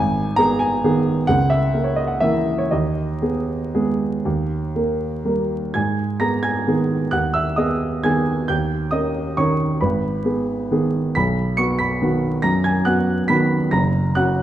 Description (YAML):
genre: classical, piano waltz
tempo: 112-146 BPM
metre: 3/4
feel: rubato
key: G# minor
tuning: A4 = 438 Hz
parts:
  - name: warm baby grand piano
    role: solo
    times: 0.0-14.4 s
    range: F#1 to C#7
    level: -18 LUFS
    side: right 1 dB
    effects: none
room: wet recital hall reverb, RT60 1.4 s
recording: dark, warm production, vinyl crackle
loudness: -18 LUFS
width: side -12 dB against mid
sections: 0.0-5.8 A section; 5.8-14.4 B section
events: none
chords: 0.0 G#m; 1.3 A#dim/C#; 2.7 G#m/D#; 4.3 D#; 5.8 G#m; 8.5 D#7; 9.8 G#m; 11.2 B; 13.7 F#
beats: 0.38 0.84 | 1.29 1.74 2.22 | 2.72 3.21 3.74 | 4.25 4.75 5.25 | 5.75 6.20 6.67 | 7.12 7.57 8.03 | 8.48 8.91 9.37 | 9.81 10.24 10.71 | 11.15 11.57 12.01 | 12.44 12.85 13.29 | 13.72 14.15